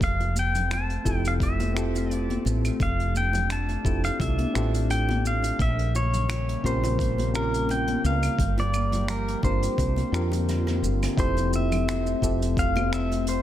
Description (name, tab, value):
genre	sunset chillout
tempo	86 BPM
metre	4/4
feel	swing 54% on 16ths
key	F major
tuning	A4 = 436 Hz
part	pedal steel guitar	melody	0.0-13.4 s	Bb4 to A5	-29 LUFS	equal	ping-pong delay
part	tine electric piano	accompaniment	0.0-13.4 s	C4 to Bb4	-32 LUFS	left 1 dB	auto-pan, vintage 12-bit sampler grit, tape echo
part	airy breathy pad	sustained chords	0.0-13.4 s	Db3 to G4	-32 LUFS	left 1 dB	chorus
part	woody fretless electric bass	bass	0.0-13.4 s	F1 to F2	-26 LUFS	equal	ensemble chorus
part	electronic kick drum	drums	0.0-12.7 s	none	-28 LUFS	equal	overdrive
part	vintage brush drum kit	drums	0.0-13.4 s	claves, finger snaps, hi-hat, rim click, shaker	-36 LUFS	right 3 dB	none
part	bongos and congas	percussion	0.2-13.2 s	none	-36 LUFS	left 3 dB	none
room	light reverb, studio ambience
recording	none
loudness	-22 LUFS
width	side -12 dB against mid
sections	0.0-11.2 A section; 11.2-13.4 B section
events	kick drops out 10.5-11.2; drum fill 10.5-11.2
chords	0.0 Fmaj7; 5.6 Bbm6; 8.4 Gm7; 11.2 Fmaj7